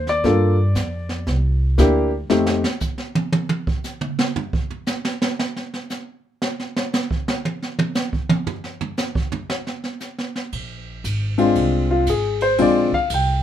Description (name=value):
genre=jazz piano trio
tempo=117 BPM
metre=4/4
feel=swing 66% on 8ths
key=unclear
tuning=A4 = 440 Hz
part: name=dark baby grand piano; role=melody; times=0.0-2.6, 11.4-13.4 s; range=Ab3 to G5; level=-18 LUFS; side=left 2 dB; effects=none
part: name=upright bass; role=bass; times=0.0-2.6, 10.5-13.4 s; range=Ab1 to G2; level=-21 LUFS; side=equal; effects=none
part: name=jazz brush drum kit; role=drums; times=0.1-13.3 s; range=brushed snare drum, hi-hat, kick drum, ride cymbal, snare drum, toms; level=-24 LUFS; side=right 2 dB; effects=none
room=light reverb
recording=minimal, uncompressed stereo recording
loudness=-19 LUFS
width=side -10 dB against mid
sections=0.0-2.3 A section; 2.3-13.4 A section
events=grand piano solo 0.0-13.4; drum solo 2.3-10.5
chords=0.2 Gm7; 1.3 C9; 2.3 N.C.; 10.5 Bb9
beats=| 0.24 0.76 1.27 1.79 | 2.30 2.82 3.33 3.85 | 4.36 4.88 5.39 5.91 | 6.42 6.93 7.45 7.96 | 8.48 8.99 9.51 10.02 | 10.53 11.05 11.56 12.08 | 12.59 13.11